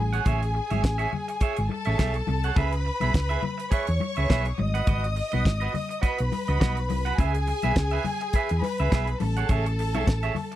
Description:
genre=disco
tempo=104 BPM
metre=4/4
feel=swing 56% on 16ths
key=C# minor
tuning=A4 = 441 Hz
part: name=warm symphonic violin section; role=second line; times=0.0-10.6 s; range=G#4 to D#6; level=-30 LUFS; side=left 2 dB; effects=none
part: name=hollow-body short-scale fingered electric bass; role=bass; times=0.0-10.3 s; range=G#1 to E2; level=-26 LUFS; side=equal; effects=none
part: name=clean electric guitar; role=accompaniment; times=0.1-10.6 s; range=F#4 to F#5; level=-30 LUFS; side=right 7 dB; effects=none
part: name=damped 70s drum kit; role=drums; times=0.1-10.6 s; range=hi-hat, kick drum, snare drum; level=-24 LUFS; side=equal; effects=none
part: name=congas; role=percussion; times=0.3-10.5 s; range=none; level=-34 LUFS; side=left 6 dB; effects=none
room=little or no reverb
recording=dry, close 1970s-style studio recording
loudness=-23 LUFS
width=side -13 dB against mid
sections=0.0-10.6 A section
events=none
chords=0.0 Amaj7; 2.6 C#m7; 4.6 G#m7; 7.2 C#m7; 9.2 Amaj7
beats=| 0.26 0.84 1.42 1.99 | 2.57 3.15 3.73 4.30 | 4.88 5.46 6.03 6.61 | 7.19 7.76 8.34 8.92 | 9.50 10.07

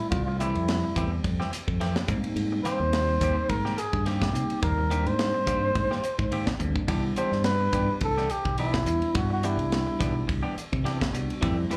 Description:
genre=electric jazz fusion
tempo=106 BPM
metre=4/4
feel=swing 55% on 16ths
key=unclear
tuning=A4 = 444 Hz
part: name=trumpet with bucket mute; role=melody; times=0.0-11.8 s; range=E4 to C5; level=-31 LUFS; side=equal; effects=none
part: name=bell-like tine electric piano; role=accompaniment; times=0.0-11.8 s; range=G3 to G4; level=-34 LUFS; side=equal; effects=lush chorus
part: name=modern bright fingered electric bass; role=bass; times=0.1-11.7 s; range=B1 to C3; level=-31 LUFS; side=equal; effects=none
part: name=tight funk drum kit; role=drums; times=0.1-11.8 s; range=hi-hat, kick drum, ride cymbal, snare drum, splash cymbal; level=-33 LUFS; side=equal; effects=none
part: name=clean electric guitar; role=stabs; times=0.3-11.8 s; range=Eb3 to G4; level=-37 LUFS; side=equal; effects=lush chorus, slapback echo
room=light reverb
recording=live gig heard through the venue's PA, club reverb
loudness=-27 LUFS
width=mono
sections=0.0-11.8 A section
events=drum fill 6.6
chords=0.0 Fmaj9; 2.1 Abmaj9; 6.9 Cmaj9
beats=| 0.12 0.68 1.24 1.80 | 2.37 2.93 3.50 4.06 | 4.62 5.19 5.75 6.32 | 6.88 7.45 8.02 8.58 | 9.15 9.71 10.28 10.85 | 11.42

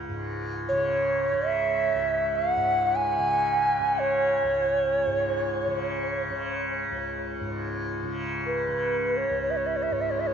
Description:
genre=world meditative, free-time meditation music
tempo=free time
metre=none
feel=none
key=C# minor pentatonic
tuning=A4 = 436 Hz
part: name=tanpura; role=drone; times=0.0-10.3 s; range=C#2 to C#3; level=-30 LUFS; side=left 1 dB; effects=none
part: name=Native American-style cedar flute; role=melody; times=0.7-10.3 s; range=B4 to G#5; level=-25 LUFS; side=right 1 dB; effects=shimmer reverb, diffuse ambient delay
room=wet huge ambient reverb, RT60 7.6 s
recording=dark, warm production, nothing above 7.7 kHz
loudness=-24 LUFS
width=side -7 dB against mid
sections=0.0-7.4 A section; 7.4-10.3 A section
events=none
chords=none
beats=free time

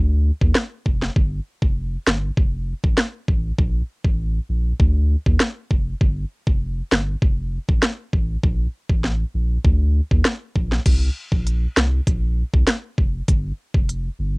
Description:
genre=dancehall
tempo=99 BPM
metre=4/4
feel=straight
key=unclear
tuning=A4 = 440 Hz
part: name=saturated sub bass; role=bass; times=0.0-14.4 s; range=F1 to Eb2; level=-21 LUFS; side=equal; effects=none
part: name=island pop drum kit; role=drums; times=0.4-14.0 s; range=crash cymbal, hi-hat, kick drum, rim click, snare drum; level=-18 LUFS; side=equal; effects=vintage 12-bit sampler grit
room=little or no reverb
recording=home recording on cassette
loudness=-18 LUFS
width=side -32 dB against mid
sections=0.0-10.9 A section; 10.9-14.4 B section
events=none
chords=none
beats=0.56 | 1.16 1.77 2.37 2.98 | 3.58 4.19 4.80 5.40 | 6.01 6.62 7.22 7.83 | 8.43 9.04 9.65 10.25 | 10.86 11.46 12.07 12.68 | 13.28 13.89

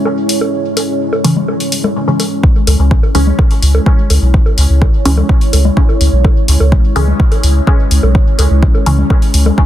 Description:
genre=dub techno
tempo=126 BPM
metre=4/4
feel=straight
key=C# minor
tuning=A4 = 440 Hz
part: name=deep dark ambient pad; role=sustained chords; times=0.0-9.7 s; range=G#3 to C#5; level=-18 LUFS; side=equal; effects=chorus, built-in reverb, sidechain pumping
part: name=bongos and congas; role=percussion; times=0.1-9.6 s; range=none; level=-20 LUFS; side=left 2 dB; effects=overdrive, sidechain pumping on perc, dub echo
part: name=electronic hi-hat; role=drums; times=0.3-9.4 s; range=none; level=-19 LUFS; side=left 2 dB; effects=none
part: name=filtered dub chord stab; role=stabs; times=1.2-9.1 s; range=C#3 to C#4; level=-19 LUFS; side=equal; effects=phaser, sidechain pumping, dub echo
part: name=electronic kick drum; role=drums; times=2.4-9.7 s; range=none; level=-10 LUFS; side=equal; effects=none
part: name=soft dub sub bass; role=bass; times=2.7-9.5 s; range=B1 to C#2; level=-10 LUFS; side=equal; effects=sidechain pumping
room=digital ambience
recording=dense, heavily limited modern master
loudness=-9 LUFS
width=side -12 dB against mid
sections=0.0-2.4 A section; 2.4-9.7 B section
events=none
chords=0.0 C#m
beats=0.05 | 0.53 1.01 1.48 1.96 | 2.44 2.91 3.39 3.86 | 4.34 4.82 5.29 5.77 | 6.25 6.72 7.20 7.67 | 8.15 8.62 9.10 9.58

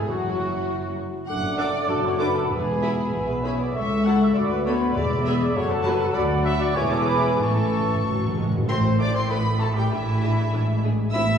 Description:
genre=quick classical-period movement for symphony orchestra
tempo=98 BPM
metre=2/4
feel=rubato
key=A major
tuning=A4 = 441 Hz
part: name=rich chamber violin section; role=melody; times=0.0-11.4 s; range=F#4 to E6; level=-35 LUFS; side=left 2 dB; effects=none
part: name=silver concert flute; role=second line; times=0.0-11.4 s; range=E4 to D6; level=-32 LUFS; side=equal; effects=none
part: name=warm chamber violin section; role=second line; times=0.0-11.4 s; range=E4 to F#5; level=-34 LUFS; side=left 2 dB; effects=none
part: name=mellow French horn section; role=sustained chords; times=0.0-11.4 s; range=G#3 to B4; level=-30 LUFS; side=left 4 dB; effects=none
part: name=warm trumpet section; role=stabs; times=0.0-8.3 s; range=F#4 to F#5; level=-28 LUFS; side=right 1 dB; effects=none
part: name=dark cor anglais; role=second line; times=0.1-11.3 s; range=E3 to A5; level=-33 LUFS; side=right 2 dB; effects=none
part: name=dark bassoon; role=accompaniment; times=0.1-8.4 s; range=E3 to C#4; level=-31 LUFS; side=equal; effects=none
part: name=rich chamber viola section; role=accompaniment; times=0.1-11.2 s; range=E3 to A4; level=-31 LUFS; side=left 1 dB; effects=none
part: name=dark studio cello section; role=bass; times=0.1-11.4 s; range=C#2 to B2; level=-28 LUFS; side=equal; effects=none
part: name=rich chamber double bass section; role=bass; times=0.1-11.4 s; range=E1 to D2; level=-27 LUFS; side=equal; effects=none
part: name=timpani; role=percussion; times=0.1-8.7 s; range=E2 to A2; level=-31 LUFS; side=equal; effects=none
room=wet scoring stage reverb, RT60 1.6 s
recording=heard from further back in the room, small room ambience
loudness=-20 LUFS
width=side -7 dB against mid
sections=0.0-8.7 A section; 8.7-11.4 B section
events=timpani fill 7.4-8.7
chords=0.1 Esus2/F#; 1.3 D/F#; 2.5 E; 3.8 A/C#; 4.4 Bm7/D; 5.0 E; 5.6 F#m; 6.1 Bm/D; 6.8 E7; 7.4 A; 8.7 A5; 9.9 E7/A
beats=| 0.08 0.68 | 1.28 1.89 | 2.51 3.13 | 3.75 4.36 | 4.96 5.55 | 6.15 6.76 | 7.40 8.05 | 8.69 9.30 | 9.92 10.53 | 11.14

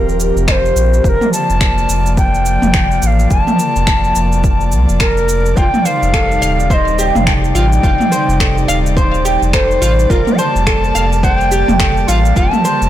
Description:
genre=organic downtempo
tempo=106 BPM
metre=4/4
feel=swing 60% on 16ths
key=unclear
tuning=A4 = 440 Hz
part: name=mellow Native American-style cedar flute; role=melody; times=0.0-12.9 s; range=Bb4 to A5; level=-17 LUFS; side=left 1 dB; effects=ping-pong delay
part: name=airy breathy pad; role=sustained chords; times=0.0-12.9 s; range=C3 to A5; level=-20 LUFS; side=equal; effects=chorus, sidechain pumping
part: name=warm sub bass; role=bass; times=0.0-12.9 s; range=Eb1 to C2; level=-15 LUFS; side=equal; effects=sidechain pumping
part: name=deep house drum kit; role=drums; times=0.1-12.9 s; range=cabasa, finger snaps, toms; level=-18 LUFS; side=right 1 dB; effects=soft clipping on snare
part: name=electronic kick drum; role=drums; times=0.5-12.5 s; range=none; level=-16 LUFS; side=equal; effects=none
part: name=oud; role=arpeggios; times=5.6-12.8 s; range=F4 to F5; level=-19 LUFS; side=right 2 dB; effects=ping-pong delay
room=light reverb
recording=blown-out, overdriven recording, overdrive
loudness=-11 LUFS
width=side -12 dB against mid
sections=0.0-12.9 A section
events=none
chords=0.0 Fsus4; 1.0 Bbmaj7/F; 5.6 Cm; 10.1 Gm7/F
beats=0.48 | 1.04 1.61 2.18 2.74 | 3.31 3.87 4.44 5.01 | 5.57 6.14 6.70 7.27 | 7.84 8.40 8.97 9.53 | 10.10 10.67 11.23 11.80 | 12.36

